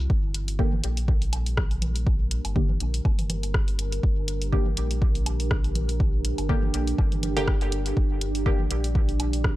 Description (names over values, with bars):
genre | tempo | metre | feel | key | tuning
dub techno | 122 BPM | 4/4 | swing 55% on 16ths | G minor | A4 = 441 Hz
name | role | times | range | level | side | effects
deep dark ambient pad | sustained chords | 0.0-9.6 s | D4 to D5 | -34 LUFS | right 2 dB | chorus, built-in reverb, sidechain pumping
warm sub bass | bass | 0.0-9.6 s | G1 to Bb1 | -28 LUFS | equal | sidechain pumping
electronic kick drum | drums | 0.1-9.6 s | none | -24 LUFS | equal | none
deep house drum kit | drums | 0.3-9.6 s | hi-hat, rim click | -32 LUFS | equal | none
filtered dub chord stab | stabs | 0.6-8.6 s | D3 to G4 | -31 LUFS | equal | chorus, phaser, sidechain pumping, dub echo
congas and woodblock | percussion | 0.7-9.3 s | none | -37 LUFS | right 1 dB | sidechain pumping on perc, dub echo
room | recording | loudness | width
little or no reverb | dry, gritty hardware recording, cassette tape | -22 LUFS | side -16 dB against mid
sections
0.1-9.6 A section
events
none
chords
0.1 Gm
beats
| 0.10 0.59 1.08 1.57 | 2.07 2.56 3.05 3.54 | 4.03 4.53 5.02 5.51 | 6.00 6.49 6.99 7.48 | 7.97 8.46 8.95 9.44